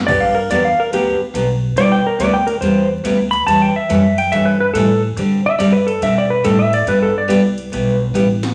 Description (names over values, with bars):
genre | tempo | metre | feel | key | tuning
country, western swing | 141 BPM | 4/4 | swing 66% on 8ths | G major | A4 = 441 Hz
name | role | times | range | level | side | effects
upright bass | bass | 0.0-8.5 s | A1 to D3 | -25 LUFS | equal | none
clean lap steel guitar | second line | 0.1-7.4 s | G4 to B5 | -18 LUFS | equal | none
picked steel-string acoustic guitar | accompaniment | 0.1-8.3 s | C3 to A4 | -19 LUFS | equal | none
80s electronic pad drums | drums | 0.1-8.5 s | crash cymbal, hi-hat, kick drum, ride cymbal, snare drum | -32 LUFS | equal | none
room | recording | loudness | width
wet large studio reverb, RT60 1.1 s | vinyl crackle | -15 LUFS | mono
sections
0.1-8.5 A section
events
electric slide guitar solo 0.1-8.5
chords
0.1 Gmaj7; 1.8 Cmaj7; 3.5 A7; 5.2 D7sus4; 6.9 G69